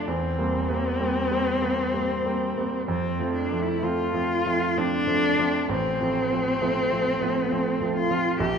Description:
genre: classical, romantic duo for cello and grand piano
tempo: 65 BPM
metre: 3/4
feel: rubato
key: F major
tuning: A4 = 440 Hz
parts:
  - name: rich cello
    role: melody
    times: 0.0-8.6 s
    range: C4 to G4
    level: -25 LUFS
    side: left 3 dB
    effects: none
  - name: clear concert grand piano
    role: accompaniment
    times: 0.0-8.6 s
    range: A1 to C4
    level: -26 LUFS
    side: right 3 dB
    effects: none
room: wet scoring stage reverb, RT60 1.8 s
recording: minimal, uncompressed stereo recording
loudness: -22 LUFS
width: side -6 dB against mid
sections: 0.0-8.6 A section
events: none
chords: 0.1 C7/E; 2.9 F; 5.7 F/A

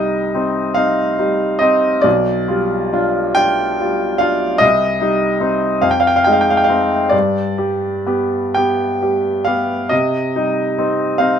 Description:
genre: classical, romantic nocturne for solo piano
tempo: 39-51 BPM (dotted quarters)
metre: 12/8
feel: rubato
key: C minor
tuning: A4 = 440 Hz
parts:
  - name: clear baby grand piano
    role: solo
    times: 0.0-11.4 s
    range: B1 to G5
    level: -14 LUFS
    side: equal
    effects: none
room: light reverb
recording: minimal, uncompressed stereo recording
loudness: -14 LUFS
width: side -8 dB against mid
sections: 0.0-11.4 A section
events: none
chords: 0.0 Cm; 2.0 G7/B; 4.6 Cm; 5.8 Fm7; 7.1 G; 9.9 Cm

